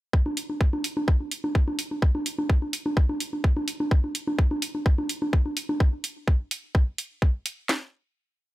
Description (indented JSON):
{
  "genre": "techno",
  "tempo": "127 BPM",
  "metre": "4/4",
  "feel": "swing 53% on 16ths",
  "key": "none",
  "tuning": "none",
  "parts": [
    { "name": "garage drum kit", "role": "drums", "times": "0.1-7.8 s", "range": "kick drum, snare drum", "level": "-20 LUFS", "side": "equal", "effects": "none" },
    { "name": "bongos", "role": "percussion", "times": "0.3-5.8 s", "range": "none", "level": "-29 LUFS", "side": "equal", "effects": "tape echo" },
    { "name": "electronic hi-hat", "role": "drums", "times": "0.4-7.6 s", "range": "none", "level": "-30 LUFS", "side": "right 2 dB", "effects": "none" }
  ],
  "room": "little or no reverb",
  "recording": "none",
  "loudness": "-23 LUFS",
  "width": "side -17 dB against mid",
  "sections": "0.1-7.7 groove; 7.7-8.5 final hit",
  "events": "none",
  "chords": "none"
}